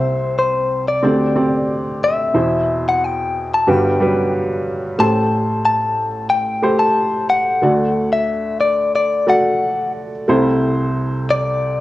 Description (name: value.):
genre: acoustic folk-pop ballad.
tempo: 91 BPM.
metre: 4/4.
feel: straight.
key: unclear.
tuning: A4 = 440 Hz.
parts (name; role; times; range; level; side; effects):
direct-recorded clean electric guitar; melody; 0.0-11.8 s; C5 to A5; -17 LUFS; left 2 dB; tremolo, cassette tape, plate reverb.
felt-muted upright piano; accompaniment; 0.0-11.8 s; G1 to E5; -18 LUFS; right 1 dB; cassette tape, plate reverb.
room: moderate small room reverb, RT60 0.5 s.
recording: home recording on cassette.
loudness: -15 LUFS.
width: side -16 dB against mid.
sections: 0.0-10.3 A section; 10.3-11.8 B section.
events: none.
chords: 0.0 C; 1.0 D7sus4; 2.4 Cmaj7/E; 3.7 Gmaj7; 5.0 Am7; 7.6 D; 10.3 C6.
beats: 0.36 1.03 1.69 | 2.35 3.01 3.67 4.32 | 4.98 5.64 6.29 6.96 | 7.61 8.27 8.94 9.61 | 10.27 10.94 11.60.